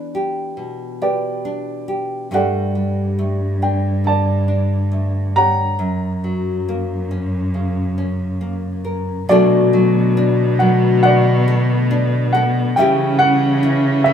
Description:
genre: acoustic folk-pop ballad.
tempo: 69 BPM.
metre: 4/4.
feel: straight.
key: B minor.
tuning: A4 = 440 Hz.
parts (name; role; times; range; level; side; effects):
dark upright piano; melody; 0.0-14.1 s; D4 to A#5; -19 LUFS; right 2 dB; none.
nylon-string guitar; accompaniment; 0.0-14.1 s; F#2 to A#4; -20 LUFS; left 2 dB; none.
warm cello; bass; 2.3-14.1 s; F#2 to C#3; -19 LUFS; right 1 dB; none.
warm chamber string section; sustained chords; 9.3-14.1 s; D3 to C#4; -24 LUFS; left 5 dB; none.
room: light reverb.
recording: minimal, uncompressed stereo recording.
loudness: -15 LUFS.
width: side -8 dB against mid.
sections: 0.0-9.3 A section; 9.3-14.1 B section.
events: none.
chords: 0.0 Em7; 2.3 Gsus2; 5.8 F#; 9.3 Bm7; 12.8 C#dim.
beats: 0.57 1.44 | 2.31 3.18 4.05 4.92 | 5.79 6.67 7.54 8.42 | 9.29 10.16 11.03 11.90 | 12.76 13.62.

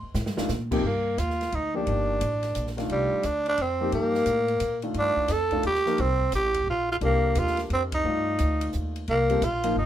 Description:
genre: modal jazz.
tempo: 175 BPM.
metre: 3/4.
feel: swing 65% on 8ths.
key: C dorian.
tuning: A4 = 440 Hz.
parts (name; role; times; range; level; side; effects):
warm concert grand piano; accompaniment; 0.0-9.8 s; C3 to D5; -30 LUFS; left 3 dB; none.
upright bass; bass; 0.0-9.9 s; G1 to Bb2; -29 LUFS; equal; none.
open jazz drum kit; drums; 0.1-9.7 s; crash cymbal, hi-hat, kick drum, ride cymbal, snare drum; -37 LUFS; right 2 dB; none.
growling tenor saxophone; melody; 0.9-9.9 s; G3 to A4; -25 LUFS; right 1 dB; none.
room: moderate small room reverb, RT60 0.6 s.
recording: minimal, uncompressed stereo recording.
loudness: -23 LUFS.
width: side -11 dB against mid.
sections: 0.8-9.9 A section.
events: drum fill 0.2-0.5; band accent 7.9.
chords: 0.0 Cm11.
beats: 0.15 0.50 | 0.84 1.18 1.52 | 1.87 2.21 2.55 | 2.90 3.24 3.58 | 3.93 4.27 4.61 | 4.96 5.30 5.64 | 5.99 6.33 6.67 | 7.02 7.36 7.70 | 8.05 8.39 8.73 | 9.08 9.42 9.76.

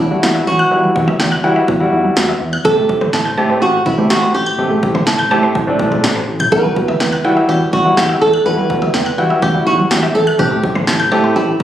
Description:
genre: synth-pop.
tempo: 124 BPM.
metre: 4/4.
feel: straight.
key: E minor.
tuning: A4 = 437 Hz.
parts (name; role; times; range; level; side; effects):
flamenco guitar; melody; 0.0-11.6 s; D4 to B4; -16 LUFS; right 2 dB; tape echo.
resonant blip pluck; arpeggios; 0.0-11.6 s; C3 to G6; -19 LUFS; equal; phaser, tape echo.
fat analog bass; bass; 0.0-11.6 s; A1 to E3; -20 LUFS; right 1 dB; none.
warm grand piano; accompaniment; 0.1-11.5 s; G3 to G4; -17 LUFS; left 1 dB; none.
punchy analog drum machine; drums; 0.2-11.6 s; kick drum, snare drum, toms; -18 LUFS; equal; none.
room: moderate studio reverb, RT60 0.6 s.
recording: recorded on a phone in the room, studio reverb, compression.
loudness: -12 LUFS.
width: side -11 dB against mid.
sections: 0.0-11.6 A section.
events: none.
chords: 0.0 Emadd9; 2.6 Am7; 6.5 Emadd9; 10.4 Am7.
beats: 0.23 | 0.71 1.20 1.68 2.17 | 2.65 3.13 3.62 4.10 | 4.58 5.07 5.55 6.04 | 6.52 7.00 7.49 7.97 | 8.46 8.94 9.42 9.91 | 10.39 10.88 11.36.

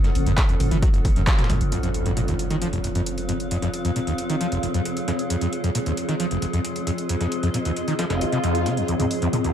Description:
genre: driving peak-time techno.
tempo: 134 BPM.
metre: 4/4.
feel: straight.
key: F minor.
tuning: A4 = 440 Hz.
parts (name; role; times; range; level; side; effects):
screaming distorted acid line; riff; 0.0-9.5 s; F1 to Gb3; -25 LUFS; equal; distortion, lush chorus, sidechain pumping, digital delay.
metallic inharmonic drone; drone; 0.0-9.5 s; F3; -30 LUFS; right 1 dB; chorus, built-in reverb, sidechain pumping.
breakbeat sampler-style drum kit; drums; 0.0-8.8 s; hi-hat, snare drum; -36 LUFS; equal; high-pass filter on hats, low-pass filter on hats, high-pass filter on snare, low-pass filter on snare.
punchy analog drum machine; drums; 0.0-9.5 s; handclaps, hi-hat, toms; -30 LUFS; right 1 dB; sidechain pumping on hats, sidechain pumping on toms.
granular cloud pad; texture; 0.0-9.5 s; C4 to Gb5; -29 LUFS; left 1 dB; built-in reverb, sidechain pumping.
growling 808-style bass; bass; 0.2-1.7 s; Gb1; -23 LUFS; equal; overdrive, sidechain pumping, low-pass filter.
electronic kick drum; drums; 0.4-1.4 s; none; -19 LUFS; equal; none.
impact, swell and riser; sound effects; 1.7-3.5, 8.1-9.5 s; none; -30 LUFS; equal; none.
room: light reverb.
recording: dark, warm production.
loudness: -20 LUFS.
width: side -9 dB against mid.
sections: 0.0-1.7 A section; 1.7-8.9 B section.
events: band accent 1.3; impact 1.7-3.5; swell 8.1-8.9.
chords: 0.0 Gbm; 1.7 Fm.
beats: 0.38 0.82 1.27 | 1.72 2.17 2.62 3.06 | 3.51 3.96 4.41 4.86 | 5.30 5.75 6.20 6.65 | 7.09 7.54 7.99 8.44 | 8.88 9.33.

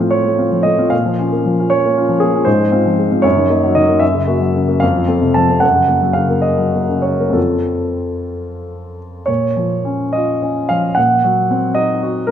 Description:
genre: classical, romantic character piece for solo piano.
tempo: 61-80 BPM (dotted quarters).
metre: 6/8.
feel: rubato.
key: Bb minor.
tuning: A4 = 440 Hz.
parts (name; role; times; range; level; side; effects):
warm baby grand piano; solo; 0.0-12.3 s; F2 to A5; -13 LUFS; equal; none.
room: wet recital hall reverb, RT60 1.6 s.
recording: none.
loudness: -13 LUFS.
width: side -9 dB against mid.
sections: 0.0-9.3 A section; 9.3-12.3 A section.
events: none.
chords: 0.0 F/A; 0.9 Bbm; 2.5 Fm/Ab; 3.2 Ebm/Gb; 4.0 Gb7; 4.8 F; 5.6 Gb; 7.4 F; 9.3 Bbm; 11.0 Cm7b5/Bb.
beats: 0.12 | 0.92 1.71 | 2.46 3.24 | 4.02 4.82 | 5.63 6.45 | 7.36 8.33 | 9.28 10.14 | 10.97 11.77.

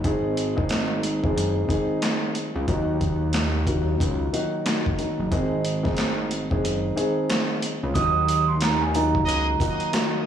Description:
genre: hip hop, boom-bap hip-hop.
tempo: 91 BPM.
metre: 4/4.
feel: swing 61% on 16ths.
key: Eb dorian.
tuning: A4 = 441 Hz.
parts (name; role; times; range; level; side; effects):
dark upright piano; accompaniment; 0.0-10.2 s; Eb3 to Ab4; -26 LUFS; left 2 dB; high-pass filter, low-pass filter.
fat analog bass; bass; 0.0-9.6 s; Gb1 to Eb2; -25 LUFS; right 1 dB; tube saturation.
boom bap sampler-style drum kit; drums; 0.0-10.1 s; handclaps, hi-hat, kick drum, snare drum; -27 LUFS; right 1 dB; none.
vibraphone with soft mallets; melody; 7.9-10.1 s; Ab5 to Eb6; -24 LUFS; right 7 dB; high-pass filter, low-pass filter, digital delay.
sleigh bells; percussion; 7.9-10.1 s; none; -44 LUFS; right 9 dB; none.
muted trumpet section; stabs; 9.3-9.5 s; Bb3 to Eb5; -30 LUFS; equal; high-pass filter, low-pass filter, digital delay.
room: light reverb, studio ambience.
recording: blown-out, overdriven recording, overdrive, small room ambience.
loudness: -21 LUFS.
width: side -9 dB against mid.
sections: 0.0-8.0 A section; 8.0-10.3 B section.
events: kick muted 6.6-8.0.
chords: 0.0 Ab; 2.7 Ebm; 5.3 Ab; 8.0 Ebm.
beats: | 0.04 0.70 1.36 2.02 | 2.68 3.34 4.00 4.66 | 5.32 5.98 6.64 7.29 | 7.95 8.61 9.27 9.93.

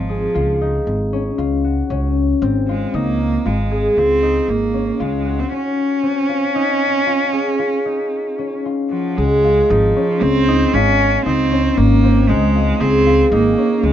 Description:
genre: contemporary instrumental, chamber music in an uneven meter.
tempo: 116 BPM.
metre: 7/4.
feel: straight.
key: Db major.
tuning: A4 = 441 Hz.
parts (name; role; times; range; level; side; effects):
warm cello; melody; 0.0-13.9 s; F3 to Db4; -18 LUFS; right 3 dB; none.
concert harp; arpeggios; 0.0-13.9 s; C4 to Ab4; -18 LUFS; left 2 dB; none.
upright bass; bass; 0.0-13.9 s; Ab1 to Db2; -19 LUFS; equal; none.
room: light reverb.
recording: nothing above 7.5 kHz.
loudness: -14 LUFS.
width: side -10 dB against mid.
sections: 0.0-9.2 A section; 9.2-13.9 B section.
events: none.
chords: 0.0 Dbmaj7.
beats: 0.35 0.87 1.39 | 1.91 2.42 2.94 3.46 3.97 4.48 5.00 | 5.52 6.03 6.55 7.07 7.59 8.12 8.65 | 9.18 9.70 10.22 10.74 11.26 11.77 12.29 | 12.80 13.32 13.84.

